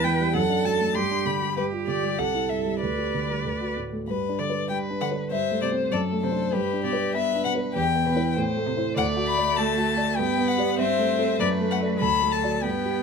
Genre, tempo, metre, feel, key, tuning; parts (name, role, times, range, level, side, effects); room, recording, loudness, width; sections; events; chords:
quick classical-period movement for piano quartet; 98 BPM; 2/4; straight; G major; A4 = 440 Hz
rich violin; melody; 0.0-13.0 s; B4 to C6; -27 LUFS; left 9 dB
rich cello; second line; 0.0-13.0 s; B2 to B4; -30 LUFS; right 7 dB
dark concert grand piano; accompaniment; 0.0-13.0 s; C2 to D5; -26 LUFS; right 2 dB
rich violin; second line; 4.7-13.0 s; G4 to D5; -30 LUFS; left 4 dB
light reverb; -22 LUFS; side -5 dB against mid
0.0-4.1 A section; 4.1-13.0 B section
0.4 D/F#; 1.0 G; 1.6 G7(no3); 2.2 C; 2.8 G/D; 3.5 D; 4.1 G; 5.3 Am7/G; 5.9 D7/F#; 6.5 G; 7.8 Em; 8.4 Am; 9.0 D; 10.2 G; 10.8 Am7/G; 11.4 D/F#; 12.0 D